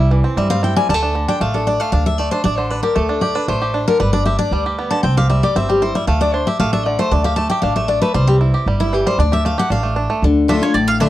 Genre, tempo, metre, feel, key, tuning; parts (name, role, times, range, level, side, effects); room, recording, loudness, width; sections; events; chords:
bluegrass; 231 BPM; 4/4; straight; D dorian; A4 = 440 Hz
picked steel-string acoustic guitar; accompaniment; 0.0-11.1 s; A2 to A5; -18 LUFS; left 3 dB
bluegrass banjo; arpeggios; 0.0-11.1 s; D3 to G4; -21 LUFS; right 3 dB
upright bass; bass; 0.0-11.1 s; G1 to G2; -18 LUFS; equal
mandolin; melody; 10.5-11.1 s; C#5 to F5; -19 LUFS; right 2 dB
studio reverb; dry, close 1970s-style studio recording; -14 LUFS; side -14 dB against mid
0.0-1.9 A section; 1.9-10.2 A section
steel-string acoustic guitar solo 0.0-10.2
0.0 C; 0.9 D5; 4.0 G; 5.0 C; 6.1 D5; 8.2 C; 9.2 Dm